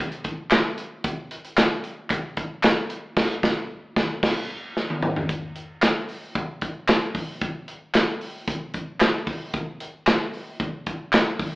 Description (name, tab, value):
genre	funk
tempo	113 BPM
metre	4/4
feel	straight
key	none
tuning	none
part	modern studio drum kit	drums	0.1-11.5 s	crash cymbal, handclaps, hi-hat, kick drum, snare drum, toms	-22 LUFS	equal	none
part	group handclap	percussion	0.5-11.3 s	none	-31 LUFS	equal	none
room	moderate large studio reverb, RT60 1.1 s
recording	band playing live in one room, AM radio sound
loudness	-22 LUFS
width	side -21 dB against mid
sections	0.0-5.3 A section; 5.3-11.6 B section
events	band accent 3.2-5.3; drum fill 4.8-5.3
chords	none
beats	0.51 | 1.04 1.57 2.10 2.64 | 3.17 3.70 4.23 4.76 | 5.29 5.82 6.35 6.88 | 7.42 7.95 8.48 9.01 | 9.54 10.07 10.60 11.13